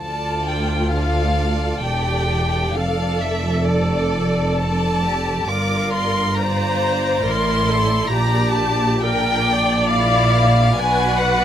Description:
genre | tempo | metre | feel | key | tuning
classical, slow romantic movement for string orchestra | 67 BPM | 3/4 | rubato | D minor | A4 = 440 Hz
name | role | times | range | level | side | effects
rich chamber violin section | melody | 0.0-11.4 s | D5 to D6 | -22 LUFS | left 1 dB | none
clear chamber violin section | second line | 0.0-11.4 s | D4 to D5 | -26 LUFS | right 1 dB | none
rich chamber viola section | accompaniment | 0.0-11.4 s | F4 to D5 | -23 LUFS | left 1 dB | none
rich studio double bass section | bass | 0.0-11.4 s | E1 to D2 | -22 LUFS | right 1 dB | none
warm chamber cello section | bass | 0.0-11.4 s | D2 to B2 | -24 LUFS | right 1 dB | none
room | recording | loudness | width
light reverb | close, detailed microphones | -16 LUFS | side -10 dB against mid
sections
0.0-11.4 A section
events
none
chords
0.0 Dm; 2.7 Dm/F; 5.5 Gm7; 8.1 Gm/Bb; 10.8 Bm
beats
| 0.01 0.93 1.84 | 2.75 3.64 4.58 | 5.49 6.38 7.25 | 8.12 9.00 9.89 | 10.77

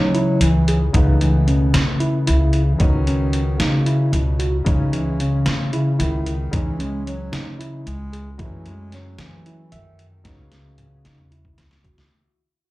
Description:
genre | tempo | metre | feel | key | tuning
progressive instrumental, band music in an uneven meter | 226 BPM (eighths) | 7/8 | straight | unclear | A4 = 438 Hz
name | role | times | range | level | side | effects
mellow bass clarinet | melody | 0.0-11.9 s | B2 to G#3 | -22 LUFS | equal | ping-pong delay
clear concert grand piano | accompaniment | 0.0-12.1 s | C#3 to C#4 | -28 LUFS | left 2 dB | slapback echo
tine electric piano | arpeggios | 0.0-12.0 s | C#4 to E5 | -26 LUFS | right 1 dB | plate reverb, slapback echo, ping-pong delay
upright bass | bass | 0.0-12.1 s | C#2 to F#3 | -22 LUFS | equal | none
trip hop sampler-style drum kit | drums | 0.1-12.1 s | hi-hat, kick drum, snare drum, toms | -22 LUFS | equal | none
room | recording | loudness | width
light reverb | live gig heard through the venue's PA, club reverb | -16 LUFS | side -18 dB against mid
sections
0.0-12.1 A section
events
fade-out 0.0-12.1; drum fill 10.3-12.1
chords
0.0 C#m; 0.9 Aadd9/C#; 2.8 Bsus2/C#; 4.7 C#m; 8.4 F#m7; 10.3 Bsus2/C#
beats
0.14 0.41 0.67 | 0.94 1.21 1.47 1.74 2.00 2.27 2.54 | 2.80 3.07 3.33 3.60 3.87 4.13 4.40 | 4.67 4.93 5.20 5.46 5.73 6.00 6.26 | 6.53 6.79 7.06 7.33 7.59 7.86 8.12 | 8.39 8.65 8.92 9.19 9.45 9.72 9.98 | 10.25 10.52 10.78 11.05 11.31 11.58 11.85

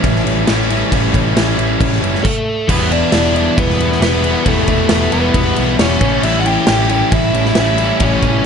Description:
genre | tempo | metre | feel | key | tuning
quiet-loud alternative rock | 136 BPM | 4/4 | straight | unclear | A4 = 441 Hz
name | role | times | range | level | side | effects
cranked stack guitar | riff | 0.0-8.5 s | A2 to E4 | -20 LUFS | right 13 dB | overdrive
distorted electric guitar | riff | 0.0-8.5 s | E2 to A3 | -21 LUFS | equal | distortion
overdriven electric guitar | riff | 0.0-8.5 s | A2 to E4 | -20 LUFS | left 15 dB | none
hollow-body short-scale picked electric bass | bass | 0.0-8.4 s | E1 to B1 | -19 LUFS | equal | none
big rock drum kit | drums | 0.0-8.3 s | crash cymbal, kick drum, snare drum | -17 LUFS | equal | none
biting lead guitar | melody | 2.2-8.5 s | A3 to G5 | -18 LUFS | left 1 dB | overdrive
room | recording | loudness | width
light reverb | nothing above 10.8 kHz | -12 LUFS | side -6 dB against mid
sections
0.0-2.7 A section; 2.7-8.5 A section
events
none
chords
0.0 A7; 2.7 Em7; 6.0 A7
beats
0.03 0.47 | 0.92 1.36 1.80 2.25 | 2.69 3.13 3.58 4.02 | 4.46 4.90 5.35 5.79 | 6.23 6.68 7.12 7.56 | 8.00 8.45

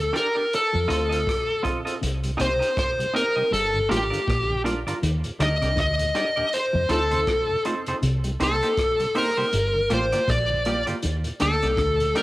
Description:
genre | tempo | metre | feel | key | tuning
roots reggae | 80 BPM | 4/4 | swing 58% on 16ths | C dorian | A4 = 439 Hz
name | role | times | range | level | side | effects
smooth overdriven lead guitar | melody | 0.0-12.2 s | G4 to Eb5 | -23 LUFS | left 1 dB | cassette tape, dub echo
deep dub fingered electric bass | bass | 0.0-12.1 s | G1 to F2 | -26 LUFS | equal | none
semi-hollow electric guitar | accompaniment | 0.1-12.2 s | Bb3 to Eb5 | -30 LUFS | right 2 dB | cassette tape, dub echo
vintage drum kit | drums | 0.2-12.2 s | hi-hat, kick drum, rim click | -32 LUFS | equal | cassette tape
mellow electric guitar | riff | 0.7-12.0 s | G2 to F3 | -30 LUFS | left 1 dB | wide subtle chorus, cassette tape
mellow tonewheel organ | accompaniment | 2.2-12.2 s | Eb2 to F4 | -32 LUFS | equal | slow rotary speaker, cassette tape, dub echo
room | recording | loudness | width
moderate booth ambience, RT60 0.2 s | home recording on cassette | -21 LUFS | side -18 dB against mid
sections
0.0-12.2 A section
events
none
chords
0.0 Ebmaj7 (rootless); 0.5 F7; 2.0 Cm7; 3.5 Gm7; 5.0 Ebmaj7; 6.5 F7; 8.0 Cm7; 9.5 Gm7; 11.0 Ebmaj7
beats
0.52 1.27 | 2.02 2.77 3.52 4.27 | 5.02 5.77 6.53 7.28 | 8.03 8.78 9.53 10.28 | 11.03 11.78

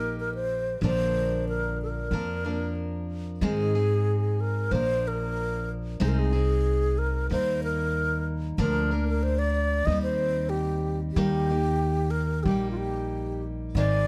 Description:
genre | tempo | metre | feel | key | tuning
folk | 93 BPM | 4/4 | straight | unclear | A4 = 440 Hz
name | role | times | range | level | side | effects
breathy wooden-headed alto flute | melody | 0.0-14.1 s | F4 to Eb5 | -31 LUFS | equal | plate reverb
picked steel-string acoustic guitar | accompaniment | 0.0-14.1 s | Ab2 to Bb4 | -34 LUFS | equal | none
upright bass | bass | 0.0-14.1 s | Ab1 to Ab2 | -30 LUFS | equal | none
room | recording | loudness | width
light reverb | dark, warm production | -27 LUFS | mono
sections
0.0-3.4 A section; 3.4-14.1 B section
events
none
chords
0.0 Eb; 0.8 Bb; 3.4 Ab; 4.7 Bb; 6.0 Ab/C; 7.3 Eb; 8.6 Bb/D; 9.9 Cm/Eb; 11.2 Eb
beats
0.18 | 0.83 1.48 2.12 2.77 | 3.42 4.07 4.71 5.36 | 6.01 6.66 7.30 7.95 | 8.60 9.24 9.89 10.54 | 11.18 11.83 12.48 13.12 | 13.77

